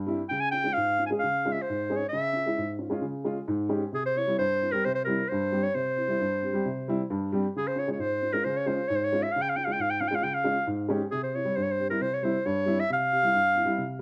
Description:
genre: klezmer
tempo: 134 BPM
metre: 4/4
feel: straight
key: unclear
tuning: A4 = 440 Hz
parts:
  - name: dark upright piano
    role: accompaniment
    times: 0.0-14.0 s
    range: G2 to Ab4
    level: -32 LUFS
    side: equal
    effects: none
  - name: warm clarinet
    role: melody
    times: 0.3-14.0 s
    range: Ab4 to Ab5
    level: -29 LUFS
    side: equal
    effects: plate reverb
room: moderate studio reverb, RT60 0.5 s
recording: none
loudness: -28 LUFS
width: mono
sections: 0.0-7.5 A section; 7.5-14.0 A section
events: speeding up 0.0-14.0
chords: 0.3 Db; 3.9 C; 7.5 Db; 11.1 C

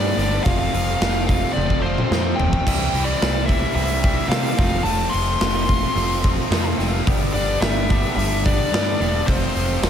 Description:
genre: classic rock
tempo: 109 BPM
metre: 4/4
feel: straight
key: unclear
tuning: A4 = 443 Hz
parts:
  - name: nasal lead guitar with a parked wah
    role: melody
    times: 0.0-9.9 s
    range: C5 to C6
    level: -25 LUFS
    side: left 2 dB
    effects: overdrive, slapback echo
  - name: crunchy overdriven guitar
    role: riff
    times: 0.0-9.9 s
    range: F2 to G4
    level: -24 LUFS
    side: equal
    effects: none
  - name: growling picked electric bass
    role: bass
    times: 0.0-9.9 s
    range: E1 to C3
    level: -24 LUFS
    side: equal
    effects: overdrive
  - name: big rock drum kit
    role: drums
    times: 0.2-9.9 s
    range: crash cymbal, hi-hat, kick drum, snare drum, toms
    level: -21 LUFS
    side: equal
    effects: none
room: light reverb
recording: none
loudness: -17 LUFS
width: side -9 dB against mid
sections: 0.0-9.9 A section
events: drum fill 1.6-2.7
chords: 0.5 F; 2.7 C; 4.6 F; 7.1 G; 9.3 F

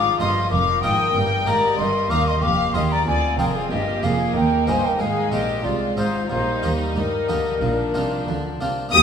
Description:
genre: classical, baroque-style concerto movement with solo episodes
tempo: 93 BPM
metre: 4/4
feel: straight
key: Eb major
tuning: A4 = 440 Hz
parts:
  - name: silver concert flute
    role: melody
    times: 0.0-9.0 s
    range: Bb4 to Eb6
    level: -23 LUFS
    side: left 3 dB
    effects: none
  - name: warm chamber violin section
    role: melody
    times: 0.0-9.0 s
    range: D4 to Eb6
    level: -26 LUFS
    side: left 4 dB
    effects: none
  - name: warm studio violin section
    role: second line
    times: 0.0-9.0 s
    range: Eb4 to Eb6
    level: -26 LUFS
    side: left 1 dB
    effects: none
  - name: harpsichord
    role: accompaniment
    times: 0.0-9.0 s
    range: D2 to Bb4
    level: -29 LUFS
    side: equal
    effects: none
  - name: rich studio viola section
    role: accompaniment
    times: 0.0-9.0 s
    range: F3 to G4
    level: -29 LUFS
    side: right 2 dB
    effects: none
  - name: warm chamber cello section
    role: bass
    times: 0.0-9.0 s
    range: D2 to G3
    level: -27 LUFS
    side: right 3 dB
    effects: none
  - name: warm chamber double bass section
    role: bass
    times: 0.0-9.0 s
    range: F1 to G2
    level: -26 LUFS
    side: right 2 dB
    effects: none
room: wet recital hall reverb, RT60 1.8 s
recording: minimal, uncompressed stereo recording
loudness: -18 LUFS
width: side -7 dB against mid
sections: 0.0-8.9 A section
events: none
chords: 0.0 Bb5; 1.2 Eb/G; 2.4 Bb7/F; 3.7 Eb; 5.0 Fm7/Ab; 6.3 Eb/Bb; 7.6 Bb

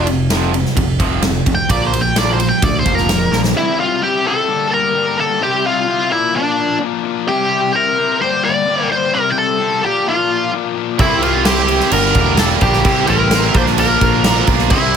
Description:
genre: quiet-loud alternative rock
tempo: 129 BPM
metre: 4/4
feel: straight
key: unclear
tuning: A4 = 440 Hz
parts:
  - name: octave-fuzz lead guitar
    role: melody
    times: 0.0-15.0 s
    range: D4 to D6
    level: -16 LUFS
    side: equal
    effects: distortion, digital delay
  - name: distorted electric guitar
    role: riff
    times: 0.0-15.0 s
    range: F2 to C5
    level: -21 LUFS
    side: left 13 dB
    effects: distortion
  - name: overdriven electric guitar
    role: riff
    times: 0.0-3.5, 11.0-15.0 s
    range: F2 to C5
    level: -20 LUFS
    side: right 15 dB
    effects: none
  - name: modern bright picked electric bass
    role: bass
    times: 0.0-3.5, 11.0-15.0 s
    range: E1 to D2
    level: -19 LUFS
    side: equal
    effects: none
  - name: big rock drum kit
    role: drums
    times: 0.1-3.5, 11.0-15.0 s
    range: crash cymbal, kick drum, ride cymbal, snare drum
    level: -17 LUFS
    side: right 1 dB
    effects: none
room: light reverb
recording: none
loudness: -13 LUFS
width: side -7 dB against mid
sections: 0.0-3.6 A section; 3.6-15.0 B section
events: lead electric guitar solo 0.0-3.6; drum fill 3.3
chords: 0.0 F5; 1.7 Bb; 3.6 C; 4.5 Gm; 5.4 C; 6.1 Bb; 7.3 C; 8.2 Gm; 9.1 C; 9.8 Bb; 11.0 C; 11.9 Gm; 12.8 C; 13.5 Bb

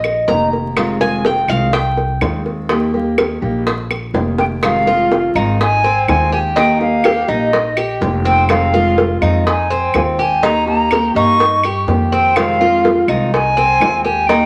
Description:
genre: latin, Cuban son and guajira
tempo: 124 BPM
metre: 4/4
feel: straight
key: F minor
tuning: A4 = 440 Hz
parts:
  - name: Cuban tres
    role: arpeggios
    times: 0.0-14.5 s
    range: C4 to Bb5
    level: -21 LUFS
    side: equal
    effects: none
  - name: upright bass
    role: bass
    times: 0.0-14.5 s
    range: F1 to G2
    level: -23 LUFS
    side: equal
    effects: none
  - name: bongos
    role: percussion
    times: 0.0-14.5 s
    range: none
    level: -22 LUFS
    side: equal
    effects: none
  - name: claves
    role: percussion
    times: 0.0-14.1 s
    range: none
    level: -27 LUFS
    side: equal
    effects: none
  - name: fingerpicked steel-string acoustic guitar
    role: accompaniment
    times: 0.3-14.5 s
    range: C3 to G4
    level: -23 LUFS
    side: equal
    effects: none
  - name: silver concert flute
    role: melody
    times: 4.4-14.5 s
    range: Eb5 to Db6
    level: -18 LUFS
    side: equal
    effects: none
room: wet studio reverb, RT60 0.9 s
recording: vinyl crackle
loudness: -15 LUFS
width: mono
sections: 0.0-4.6 A section; 4.6-14.5 B section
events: Cuban tres solo 0.0-4.6; drum fill 4.4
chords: 0.0 Eb; 0.8 Fm7; 2.7 Eb; 4.6 Fm7; 6.6 Eb; 8.5 Fm7; 10.4 Eb; 12.4 Fm7

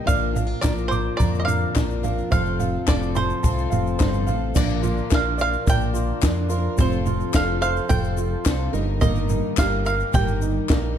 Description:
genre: indie folk with a building arrangement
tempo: 107 BPM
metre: 4/4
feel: straight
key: Bb major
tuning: A4 = 440 Hz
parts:
  - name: fingerpicked steel-string acoustic guitar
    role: accompaniment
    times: 0.0-6.8 s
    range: F2 to F4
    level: -32 LUFS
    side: left 2 dB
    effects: none
  - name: picked plugged-in twelve-string acoustic guitar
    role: accompaniment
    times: 0.0-11.0 s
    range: G2 to Bb4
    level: -30 LUFS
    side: left 9 dB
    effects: none
  - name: dark upright piano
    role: arpeggios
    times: 0.0-11.0 s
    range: Bb3 to D6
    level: -29 LUFS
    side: right 5 dB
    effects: none
  - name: bluegrass banjo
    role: melody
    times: 0.1-10.9 s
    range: C5 to G5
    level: -27 LUFS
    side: right 3 dB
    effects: none
  - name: felt-muted upright piano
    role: accompaniment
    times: 0.1-11.0 s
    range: F1 to Eb5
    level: -36 LUFS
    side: right 6 dB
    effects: none
  - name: fingered electric bass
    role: bass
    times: 0.1-11.0 s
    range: F1 to F2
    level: -25 LUFS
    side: equal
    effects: none
  - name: compact cocktail drum kit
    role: drums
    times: 0.1-10.8 s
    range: crash cymbal, kick drum, snare drum, toms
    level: -23 LUFS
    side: equal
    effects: none
  - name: tube shaker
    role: percussion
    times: 0.1-10.8 s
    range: none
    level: -39 LUFS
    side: left 13 dB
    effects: none
  - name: group handclap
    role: percussion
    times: 0.6-10.8 s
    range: none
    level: -34 LUFS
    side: left 10 dB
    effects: none
room: light reverb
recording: dark, warm production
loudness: -19 LUFS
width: side -9 dB against mid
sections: 0.0-4.5 A section; 4.5-11.0 B section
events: none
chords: 0.1 Bb; 2.3 F; 4.5 Bb; 6.8 F; 8.7 Eb/G

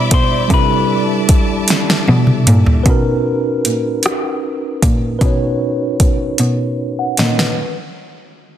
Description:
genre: slow six-eight R&B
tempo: 51 BPM (dotted quarters)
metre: 6/8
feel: straight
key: unclear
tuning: A4 = 437 Hz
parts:
  - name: semi-hollow electric guitar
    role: melody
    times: 0.0-2.0 s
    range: B4 to C5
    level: -20 LUFS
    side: left 3 dB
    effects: phaser, digital delay
  - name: mellow tine electric piano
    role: accompaniment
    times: 0.0-7.7 s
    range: G3 to F#5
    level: -19 LUFS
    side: right 1 dB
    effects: medium stereo tremolo, low-pass filter
  - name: clear studio string section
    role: sustained chords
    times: 0.0-2.8 s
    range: D5 to D6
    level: -24 LUFS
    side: equal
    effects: none
  - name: rich cello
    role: bass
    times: 0.0-7.5 s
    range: A#2 to C3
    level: -18 LUFS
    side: equal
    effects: none
  - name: smooth R&B drum kit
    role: drums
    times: 0.1-7.6 s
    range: hi-hat, kick drum, rim click, snare drum, toms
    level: -14 LUFS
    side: equal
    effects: soft clipping on snare
room: little or no reverb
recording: dense, heavily limited modern master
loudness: -12 LUFS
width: side -10 dB against mid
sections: 0.0-2.9 A section; 2.9-7.6 B section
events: drum fill 1.7-2.9, 6.4-7.6; filter sweep on tine electric piano 2.9-7.6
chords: 0.0 Cmaj9; 2.9 Bmaj9

